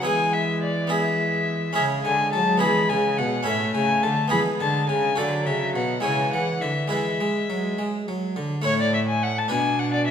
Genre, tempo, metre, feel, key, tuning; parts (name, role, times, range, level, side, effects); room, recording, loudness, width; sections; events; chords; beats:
classical, renaissance-style consort dance; 70 BPM (dotted quarters); 6/8; straight; A4 = 439 Hz
rich violin; melody; 0.0-10.1 s; C#5 to B5; -24 LUFS; left 4 dB
harpsichord; accompaniment; 0.0-10.1 s; A2 to C#5; -26 LUFS; right 1 dB
warm viola; accompaniment; 0.0-10.1 s; E3 to D4; -29 LUFS; equal
dark cello; bass; 0.0-10.1 s; A2 to G#3; -29 LUFS; right 3 dB
wet recital hall reverb, RT60 1.6 s; minimal, uncompressed stereo recording; -20 LUFS; side -8 dB against mid
0.0-8.6 A section; 8.6-10.1 A section
0.1 E; 1.8 C#m; 2.6 E; 3.5 A; 4.3 E; 5.2 D; 6.0 C#m; 6.9 E; 8.6 A; 9.5 Bm
| 0.06 0.91 | 1.76 2.61 | 3.46 4.32 | 5.18 6.04 | 6.91 7.78 | 8.65 9.51